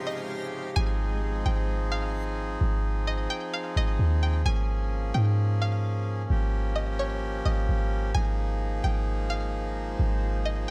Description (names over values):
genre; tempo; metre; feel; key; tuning
hip hop; 130 BPM; 4/4; half-time; Ab major; A4 = 438 Hz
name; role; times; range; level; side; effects
string-like resonator pluck; melody; 0.0-10.7 s; Db5 to Ab5; -37 LUFS; equal; chorus, phaser, slapback echo
accordion; sustained chords; 0.0-10.7 s; Ab2 to Ab4; -36 LUFS; equal; none
backwards swelling texture; texture; 0.0-0.7, 9.9-10.7 s; Ab3 to C6; -44 LUFS; equal; built-in reverb
warm 808-style bass; bass; 0.8-10.7 s; Ab1 to Ab2; -28 LUFS; equal; none
room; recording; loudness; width
digital ambience; none; -28 LUFS; mono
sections
0.8-10.7 A section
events
none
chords
0.0 Eb13/Ab; 0.8 Ab6; 4.5 Bbm7/Ab; 6.3 Eb9/Ab; 8.1 Ab6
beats
0.30 | 0.76 1.22 1.69 2.15 | 2.61 3.07 3.53 3.99 | 4.46 4.92 5.38 5.84 | 6.30 6.76 7.22 7.69 | 8.15 8.61 9.07 9.53 | 9.99 10.46